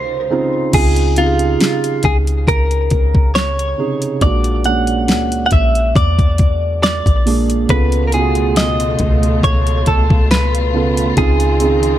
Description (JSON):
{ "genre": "contemporary R&B", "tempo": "69 BPM", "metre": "4/4", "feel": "swing 54% on 16ths", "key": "unclear", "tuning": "A4 = 440 Hz", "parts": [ { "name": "direct-recorded clean electric guitar", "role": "melody", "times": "0.0-12.0 s", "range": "F4 to F#5", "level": "-18 LUFS", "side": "right 1 dB", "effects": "wide subtle chorus" }, { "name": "felt-muted upright piano", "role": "accompaniment", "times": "0.0-12.0 s", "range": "Bb2 to A4", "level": "-20 LUFS", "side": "right 5 dB", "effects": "none" }, { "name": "warm symphonic string section", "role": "sustained chords", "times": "0.0-0.7, 7.7-12.0 s", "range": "Db2 to F4", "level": "-23 LUFS", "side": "left 2 dB", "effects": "none" }, { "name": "clean 808-style bass", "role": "bass", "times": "0.7-12.0 s", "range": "Bb1 to Fb2", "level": "-16 LUFS", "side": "left 1 dB", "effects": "none" }, { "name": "smooth R&B drum kit", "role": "drums", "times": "0.7-12.0 s", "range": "crash cymbal, hi-hat, kick drum, snare drum", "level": "-16 LUFS", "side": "left 1 dB", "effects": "none" } ], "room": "digital ambience", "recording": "dark, warm production", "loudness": "-12 LUFS", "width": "side -12 dB against mid", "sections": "0.7-12.0 A section", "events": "break 0.0-0.7", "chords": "0.0 Dbmaj9; 4.2 Bb7alt; 7.7 Db7b13; 11.2 Dbmaj9" }